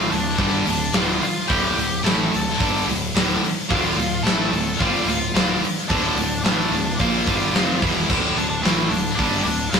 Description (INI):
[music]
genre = quiet-loud alternative rock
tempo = 109 BPM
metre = 4/4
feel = straight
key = D minor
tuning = A4 = 439 Hz
[part]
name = octave-fuzz lead guitar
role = melody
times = 0.0-9.8 s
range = D4 to A5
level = -26 LUFS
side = left 1 dB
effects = distortion
[part]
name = heavy high-gain guitar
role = riff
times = 0.0-9.8 s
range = D2 to Bb3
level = -26 LUFS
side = left 5 dB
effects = distortion
[part]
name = high-gain distorted guitar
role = riff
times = 0.0-9.8 s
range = D2 to Bb3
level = -23 LUFS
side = right 3 dB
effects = distortion
[part]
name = fuzz fingered electric bass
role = bass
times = 0.0-9.8 s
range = D1 to Bb1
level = -29 LUFS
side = left 1 dB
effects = overdrive
[part]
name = big rock drum kit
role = drums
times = 0.1-9.8 s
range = crash cymbal, hi-hat, kick drum, snare drum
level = -22 LUFS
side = equal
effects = none
[sound]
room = moderate stone room reverb, RT60 1.4 s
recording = rough rehearsal-room recording, tube saturation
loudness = -18 LUFS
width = side -6 dB against mid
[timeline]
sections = 0.0-9.8 A section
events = none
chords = 0.0 Dm